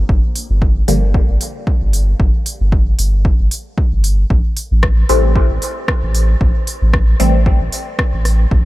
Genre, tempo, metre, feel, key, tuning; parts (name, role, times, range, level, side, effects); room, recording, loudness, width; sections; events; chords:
dub techno; 114 BPM; 4/4; swing 55% on 16ths; A phrygian; A4 = 439 Hz
soft dub sub bass; bass; 0.0-8.6 s; G1 to A1; -14 LUFS; equal; sidechain pumping
electronic kick drum; drums; 0.1-8.6 s; -15 LUFS; equal
deep house drum kit; drums; 0.4-8.4 s; hi-hat, rim click; -23 LUFS; equal
filtered dub chord stab; stabs; 0.9-1.1, 5.1-7.3 s; D3 to C4; -21 LUFS; left 1 dB; phaser, sidechain pumping, dub echo
digital ambience; -12 LUFS; side -17 dB against mid
0.0-4.3 A section; 4.3-8.7 A section
filter sweep on synth stab 4.3-8.7